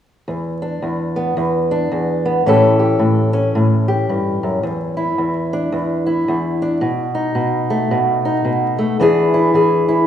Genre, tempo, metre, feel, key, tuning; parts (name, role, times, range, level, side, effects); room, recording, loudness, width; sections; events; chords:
blues; 110 BPM; 4/4; swing 62% on 8ths; A4 = 440 Hz
fingerpicked old ladder-braced acoustic guitar; solo; 0.3-10.1 s; E2 to A4; -15 LUFS; equal
moderate concert hall reverb, RT60 1.9 s; recorded in a church or concert hall, vinyl crackle, studio ambience; -15 LUFS; side -9 dB against mid
0.3-9.0 A section; 9.0-10.1 B section
0.3 E5; 2.5 A7; 4.6 Dsus2/E; 6.8 B7; 9.0 E7